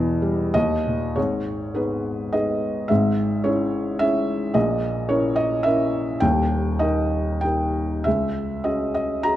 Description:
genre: classical, lyrical solo piano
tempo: 91-111 BPM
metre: 3/4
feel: rubato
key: G# minor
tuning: A4 = 442 Hz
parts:
  - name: felt-muted upright piano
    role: solo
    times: 0.0-9.4 s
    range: D#1 to A#5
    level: -20 LUFS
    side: equal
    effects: none
room: light reverb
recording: none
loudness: -20 LUFS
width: side -13 dB against mid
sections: 0.0-1.2 A section; 1.2-9.4 B section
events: none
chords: 0.0 Em; 0.5 D#5; 1.2 G#m; 2.9 C#m/G#; 4.6 A#dim; 6.2 D#; 8.1 C#sus4

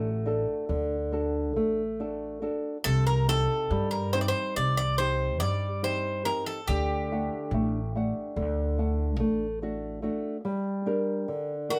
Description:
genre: greek folk, Greek bouzouki band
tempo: 142 BPM (eighths)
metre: 9/8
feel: straight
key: unclear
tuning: A4 = 443 Hz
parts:
  - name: Greek bouzouki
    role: melody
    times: 0.0-11.8 s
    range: F#4 to D5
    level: -32 LUFS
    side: equal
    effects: none
  - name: flamenco guitar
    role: accompaniment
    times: 0.0-11.8 s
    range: C3 to F#5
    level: -32 LUFS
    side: equal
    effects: none
  - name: upright bass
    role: bass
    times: 0.0-10.1 s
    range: A1 to G2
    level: -32 LUFS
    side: equal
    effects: none
room: moderate studio reverb, RT60 0.6 s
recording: none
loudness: -29 LUFS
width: mono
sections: 0.0-10.4 A section; 10.4-11.8 B section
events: speeding up 0.0-11.8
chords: 0.0 D; 2.9 Cm; 6.7 D; 10.4 Gm

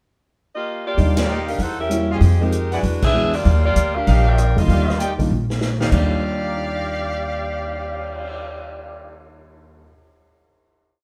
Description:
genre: jazz, big band swing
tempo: 195 BPM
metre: 4/4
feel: swing 62% on 8ths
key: Eb major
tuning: A4 = 439 Hz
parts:
  - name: mellow saxophone section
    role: melody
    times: 0.6-5.2 s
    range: Ab3 to G5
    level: -25 LUFS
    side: equal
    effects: none
  - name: warm concert grand piano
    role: accompaniment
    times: 1.0-10.1 s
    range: Eb2 to Bb6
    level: -28 LUFS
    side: equal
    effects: none
  - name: upright bass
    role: bass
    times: 1.0-9.8 s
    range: Bb1 to F2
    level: -22 LUFS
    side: equal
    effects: none
  - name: swinging big-band drum kit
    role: drums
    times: 1.0-8.3 s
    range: crash cymbal, cymbal swell, hi-hat, kick drum, ride cymbal, rim click, snare drum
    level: -29 LUFS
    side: equal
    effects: none
  - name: warm trumpet section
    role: stabs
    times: 1.3-9.2 s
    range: Eb4 to G5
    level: -29 LUFS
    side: equal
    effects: none
room: moderate studio reverb, RT60 0.9 s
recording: band playing live in one room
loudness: -20 LUFS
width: mono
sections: 0.0-1.0 pickup bar; 1.0-5.9 A section; 5.9-8.4 final chord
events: band accent 1.1, 3.0; drum fill 5.3-5.9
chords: 0.0 Ebadd9; 1.0 Ebmaj9; 1.6 Edim7; 2.2 Fm9; 2.8 E9; 3.5 Ebmaj9

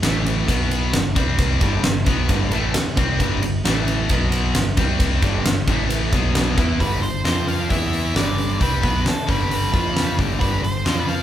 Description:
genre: classic rock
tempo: 133 BPM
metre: 4/4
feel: straight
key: G mixolydian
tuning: A4 = 437 Hz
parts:
  - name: crunchy overdriven guitar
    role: riff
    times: 0.0-11.2 s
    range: G2 to F4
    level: -27 LUFS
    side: right 6 dB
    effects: none
  - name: tight distorted guitar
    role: riff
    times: 0.0-11.2 s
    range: G2 to F4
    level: -25 LUFS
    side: left 6 dB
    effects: distortion
  - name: picked electric bass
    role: bass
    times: 0.0-11.2 s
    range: G1 to F2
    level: -24 LUFS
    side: equal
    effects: none
  - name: huge arena drum kit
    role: drums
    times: 0.0-11.2 s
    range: hi-hat, kick drum, ride cymbal, snare drum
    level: -21 LUFS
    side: equal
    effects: none
  - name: cowbell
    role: percussion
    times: 0.0-11.2 s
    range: none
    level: -38 LUFS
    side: right 4 dB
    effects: none
  - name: octave-fuzz lead guitar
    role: melody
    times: 6.8-11.2 s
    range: A4 to F5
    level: -26 LUFS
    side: right 2 dB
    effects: distortion
room: light reverb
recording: band playing live in one room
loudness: -17 LUFS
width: side -11 dB against mid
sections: 0.0-6.8 A section; 6.8-11.2 B section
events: none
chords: 0.0 A5; 0.5 B5; 0.9 G5; 1.2 C5; 1.6 G; 3.6 A5; 4.1 B5; 4.5 G5; 4.8 C5; 5.2 G5; 5.7 A5; 6.1 B5; 6.6 E5; 6.8 G; 7.2 F5; 7.7 E5; 8.2 G; 9.7 F5; 10.2 G5

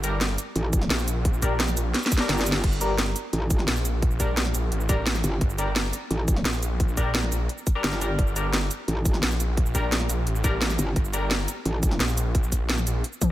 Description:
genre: dark technical drum and bass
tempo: 173 BPM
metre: 4/4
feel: straight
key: G minor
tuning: A4 = 439 Hz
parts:
  - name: band-passed chord stab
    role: stabs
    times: 0.0-11.2 s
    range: G3 to Bb4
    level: -31 LUFS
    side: left 2 dB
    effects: chorus, phaser, diffuse ambient delay
  - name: wide detuned saw bass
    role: bass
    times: 0.0-13.0 s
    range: G1 to Bb1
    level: -26 LUFS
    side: equal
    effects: chorus, overdrive, sidechain pumping
  - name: drum and bass drum kit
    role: drums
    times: 0.0-13.3 s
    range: cabasa, crash cymbal, hi-hat, snare drum, toms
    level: -27 LUFS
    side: equal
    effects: none
  - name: metallic wobble bass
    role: bass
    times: 0.6-12.0 s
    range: G1 to A1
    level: -25 LUFS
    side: equal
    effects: chorus
  - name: electronic kick drum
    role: drums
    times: 0.7-13.3 s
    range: none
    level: -23 LUFS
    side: equal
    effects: none
room: light reverb, digital ambience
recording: none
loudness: -22 LUFS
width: side -14 dB against mid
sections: 0.0-13.3 A section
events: drum fill 1.9-2.6; kick drops out 2.3-2.6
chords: 0.0 Gm

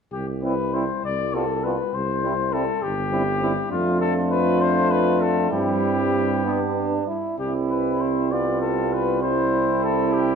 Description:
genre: classical, brass quintet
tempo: 66 BPM (dotted quarters)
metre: 6/8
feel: rubato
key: C major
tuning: A4 = 445 Hz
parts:
  - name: mellow trumpet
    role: melody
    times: 0.1-10.4 s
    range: F4 to D5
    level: -25 LUFS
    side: left 6 dB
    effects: none
  - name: warm tuba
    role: bass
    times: 0.1-10.4 s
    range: G1 to G2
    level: -26 LUFS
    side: right 2 dB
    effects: none
  - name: mellow flugelhorn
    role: second line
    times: 0.4-10.4 s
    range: D4 to F4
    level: -27 LUFS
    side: right 6 dB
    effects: none
  - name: brilliant trombone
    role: accompaniment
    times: 0.4-10.4 s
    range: G3 to E4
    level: -29 LUFS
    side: right 3 dB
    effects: none
  - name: mellow French horn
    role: accompaniment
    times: 0.4-10.4 s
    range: B3 to D4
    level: -29 LUFS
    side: left 1 dB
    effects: none
room: wet recital hall reverb, RT60 1.5 s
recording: dark, warm production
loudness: -20 LUFS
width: side -6 dB against mid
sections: 0.1-10.4 A section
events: none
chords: 0.1 C; 1.0 G7/C; 1.9 C; 3.7 Dm/F; 5.5 C/G; 6.4 G; 7.4 C; 8.3 G7/C; 9.2 C

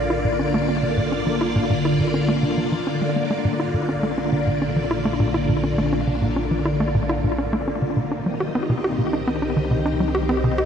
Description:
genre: ambient, sequencer-driven space music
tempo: 103 BPM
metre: 4/4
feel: straight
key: unclear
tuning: A4 = 440 Hz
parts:
  - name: phased string machine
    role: sustained chords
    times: 0.0-10.7 s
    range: D3 to Eb5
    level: -22 LUFS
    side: equal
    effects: ensemble chorus, phaser
  - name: tight sequencer bass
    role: riff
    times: 0.0-10.7 s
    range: Bb2 to G4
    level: -23 LUFS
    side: equal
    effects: ping-pong delay
  - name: analog drone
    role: bass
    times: 0.0-10.7 s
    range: Bb1 to C2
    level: -30 LUFS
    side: equal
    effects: chorus
room: wet huge ambient reverb, RT60 8.4 s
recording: dreamy mix soaked in reverb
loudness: -19 LUFS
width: side -8 dB against mid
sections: 0.0-10.7 A section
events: filter sweep on analog synth bass 0.0-10.7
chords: 0.0 Bb; 8.0 Cm

